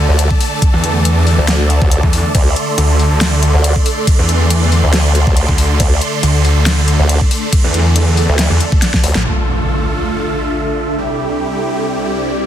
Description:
heavy wobble dubstep; 139 BPM; 4/4; swing 54% on 16ths, half-time; D minor; A4 = 440 Hz
supersaw chords; sustained chords; 0.0-12.5 s; C2 to C6; -18 LUFS; right 1 dB; phaser, sidechain pumping
snarling distorted saw bass; bass; 0.0-9.2 s; A1 to E2; -12 LUFS; equal; distortion, overdrive
formant-sweep wobble bass; bass; 0.1-9.1 s; D2; -12 LUFS; equal; chorus, overdrive
dubstep drum kit; drums; 0.2-9.2 s; crash cymbal, hi-hat, snare drum; -19 LUFS; equal; overdrive, low-pass filter on hats, low-pass filter on cymbals, low-pass filter on snare
electronic kick drum; drums; 0.3-9.0 s; -13 LUFS; equal; overdrive
impact; sound effects; 9.3-11.0 s; -20 LUFS; equal
ethereal airy pad; texture; 9.8-12.5 s; C4 to E5; -20 LUFS; equal; ensemble chorus, built-in reverb, sidechain pumping
digital ambience; dense, heavily limited modern master; -11 LUFS; side -11 dB against mid
0.0-9.3 A section; 9.3-12.5 B section
drop 0.0-9.3; drum fill 8.8-9.3; band accent 9.1; impact 9.3-11.0
0.0 D5; 9.3 Dm; 11.0 C

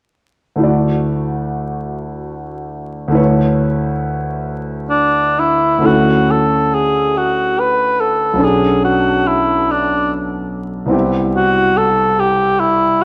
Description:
classical, impressionist duo for cor anglais and grand piano; 70 BPM; 3/4; uneven beats, rubato; D major; A4 = 441 Hz
bright concert grand piano; accompaniment; 0.6-13.0 s; B1 to D5; -19 LUFS; equal
warm cor anglais; melody; 4.9-13.0 s; D4 to B4; -16 LUFS; equal
wet recital hall reverb, RT60 1.9 s; worn, warbling old tape, cassette tape, vinyl crackle, warbly pitch drift; -15 LUFS; mono
0.6-5.8 A section; 5.8-13.0 B section
0.6 Dadd9; 3.2 Bm11/D; 5.8 Dsus2; 8.4 Bm9; 10.9 Cmaj7

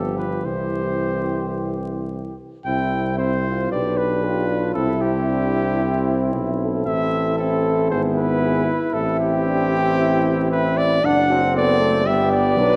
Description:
classical, brass quintet; 115 BPM; 4/4; rubato; C major; A4 = 440 Hz
warm trumpet; melody; 0.0-12.8 s; G4 to G5; -26 LUFS; equal
mellow trumpet; second line; 0.0-12.8 s; B3 to G4; -30 LUFS; equal
warm French horn; accompaniment; 0.0-12.8 s; B3 to B4; -28 LUFS; equal
warm trombone; accompaniment; 0.0-12.8 s; E3 to D4; -27 LUFS; equal
clear tuba; bass; 0.0-12.8 s; F#1 to C2; -27 LUFS; equal
wet scoring stage reverb, RT60 1.7 s; dark, warm production, vinyl crackle, nothing above 11.0 kHz; -20 LUFS; mono
0.0-2.7 A section; 2.7-12.8 A section
0.5 C; 3.7 G/B; 4.8 C; 6.9 Am; 7.9 E/G#; 8.9 Am; 11.0 D7/F#; 12.1 G

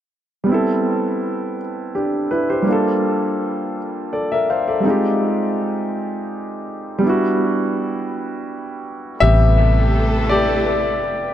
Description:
slow six-eight R&B; 55 BPM (dotted quarters); 6/8; straight; A minor; A4 = 440 Hz
warm concert grand piano; accompaniment; 0.4-11.3 s; C3 to F5; -18 LUFS; equal; dub echo
warm studio string section; sustained chords; 9.2-11.3 s; A3 to B4; -25 LUFS; right 1 dB
fingered electric bass; bass; 9.2-11.3 s; F1 to A1; -16 LUFS; equal
light reverb, small room reverb; echo-heavy mix; -17 LUFS; side -11 dB against mid
0.5-9.2 A section; 9.2-11.3 B section
grand piano solo 9.2-11.3
0.5 Am9; 2.7 Gm9; 4.8 Fm9; 7.0 Em9; 9.2 Am9

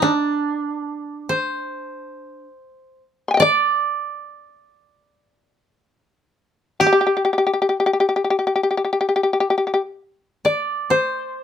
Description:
japanese traditional, Japanese chamber music; 63-72 BPM; 4/4; rubato; A4 = 439 Hz
shamisen; melody; 0.0-11.4 s; D4 to C6; -17 LUFS; left 3 dB
koto; second line; 0.0-11.4 s; D4 to D5; -20 LUFS; right 3 dB
light reverb; close, detailed microphones; -18 LUFS; side -9 dB against mid
0.0-10.5 A section

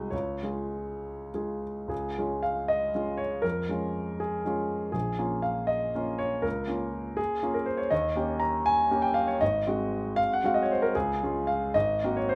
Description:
classical, romantic character piece for solo piano; 64-83 BPM (dotted quarters); 6/8; rubato; Db major; A4 = 440 Hz
clear grand piano; solo; 0.0-12.4 s; Ab1 to Bb5; -29 LUFS; equal
light reverb; -29 LUFS; mono
0.0-1.9 A section; 1.9-12.4 A section
0.1 Db; 3.4 Db/F; 4.9 Bbm7; 6.5 Bbm/Db; 7.9 Eb7; 9.4 Ab7; 10.9 Db; 11.7 Ab9

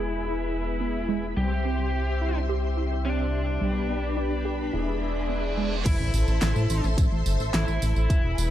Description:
synthwave; 107 BPM; 4/4; straight; A minor; A4 = 440 Hz
biting lead guitar; melody; 0.0-8.5 s; D4 to G4; -32 LUFS; left 1 dB; overdrive, tape echo
analog string pad; sustained chords; 0.0-8.5 s; G4 to C6; -33 LUFS; left 1 dB; ensemble chorus, sidechain pumping
warbly dusty pluck; arpeggios; 0.0-5.7 s; G3 to G4; -32 LUFS; right 4 dB; chorus, phaser, cassette tape, ping-pong delay
analog synth brass; stabs; 0.0-5.8 s; B2 to G#4; -35 LUFS; left 5 dB; chorus, ping-pong delay
chorused synth bass; bass; 0.0-8.5 s; E1 to A2; -27 LUFS; equal; sidechain pumping
reverse cymbal and sub drop; sound effects; 5.0-8.1 s; -38 LUFS; right 1 dB
electronic kick drum; drums; 5.9-8.2 s; -22 LUFS; equal
pop drum kit; drums; 5.9-8.5 s; crash cymbal, handclaps, hi-hat, snare drum, tambourine; -31 LUFS; equal
light reverb, digital ambience; dark, warm production, low-pass filter; -23 LUFS; side -12 dB against mid
0.0-5.9 A section; 5.9-8.5 B section
filter sweep 0.0-5.9; reverse cymbal 5.0-5.9; impact 5.9-8.1
0.0 E; 1.4 C; 3.6 G/B; 4.7 E; 5.9 Am

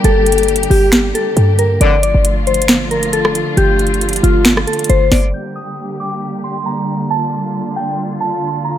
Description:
hip hop, trap; 136 BPM; 4/4; half-time; G minor; A4 = 440 Hz
soft synth bell; melody; 0.0-8.8 s; F4 to G6; -17 LUFS; left 2 dB; chorus, phaser
muted studio string section; sustained chords; 0.0-8.8 s; D3 to G4; -20 LUFS; right 1 dB
short 808-style bass; bass; 0.0-5.3 s; G1 to G2; -14 LUFS; equal
trap drum kit; drums; 0.0-5.2 s; finger snaps, hi-hat, rim click, snare drum; -15 LUFS; right 1 dB
bright brass ensemble; stabs; 1.8-1.9 s; F2 to D3; -22 LUFS; left 3 dB
light reverb, studio reverb; low-pass filter; -12 LUFS; side -11 dB against mid
0.0-5.3 A section; 5.3-8.8 B section
0.0 Gm; 1.8 Dm/G; 5.3 Gm

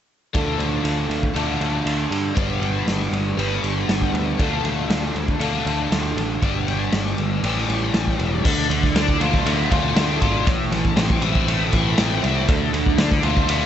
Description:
psychedelic rock; 119 BPM; 4/4; straight; D dorian, D minor from 8.4 s; A4 = 443 Hz
crunchy overdriven guitar; riff; 0.3-13.7 s; G2 to B4; -22 LUFS; left 1 dB; flanger
picked electric bass; bass; 0.3-13.7 s; E1 to G2; -24 LUFS; equal
raw garage drum kit; drums; 0.3-13.6 s; crash cymbal, kick drum, ride cymbal, snare drum; -23 LUFS; equal
studio ambience; nothing above 8.0 kHz; -18 LUFS; side -10 dB against mid
0.3-8.4 A section; 8.4-13.7 B section
0.3 Dm; 2.4 G; 4.4 Dm; 6.4 G; 7.4 A7; 8.4 Dm; 10.5 Am; 12.5 Dm

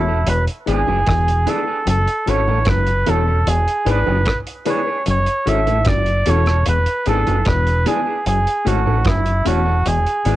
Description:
roots reggae; 75 BPM; 4/4; straight; F# minor; A4 = 439 Hz
clear flugelhorn; melody; 0.0-10.4 s; E4 to E5; -20 LUFS; right 2 dB; cassette tape
mellow clav; riff; 0.0-10.4 s; E2 to A2; -26 LUFS; left 5 dB; cassette tape
dark upright piano; stabs; 0.0-10.4 s; A3 to B4; -23 LUFS; left 8 dB; cassette tape
deep dub fingered electric bass; bass; 0.0-10.4 s; E1 to A1; -18 LUFS; equal; transformer saturation
electric guitar at the edge of break-up; accompaniment; 0.1-10.4 s; B3 to A4; -27 LUFS; right 8 dB; tremolo, cassette tape
damped 70s drum kit; drums; 0.3-10.4 s; hi-hat, kick drum, rim click; -23 LUFS; equal; vintage 12-bit sampler grit, cassette tape
bongos; percussion; 0.9-9.7 s; -28 LUFS; right 9 dB
light reverb; home recording on cassette; -15 LUFS; side -15 dB against mid
0.0-10.4 A section
0.3 E7; 1.9 F#m7; 3.5 E7; 5.1 F#m7; 6.7 E7; 8.3 F#m7; 9.9 E7

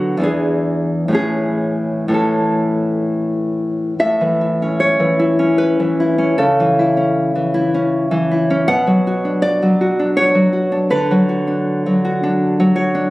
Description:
romantic piece for solo classical guitar; 60-83 BPM; 3/4; rubato; A major; A4 = 441 Hz
nylon-string guitar; solo; 0.0-13.1 s; E2 to F#5; -14 LUFS; equal
moderate recital hall reverb, RT60 1.8 s; recorded on a phone in the room, club reverb; -14 LUFS; side -18 dB against mid
0.0-4.0 A section; 4.0-13.1 B section
0.2 E7; 1.2 A; 6.4 A/C#; 8.7 Bm; 10.9 Bm/D

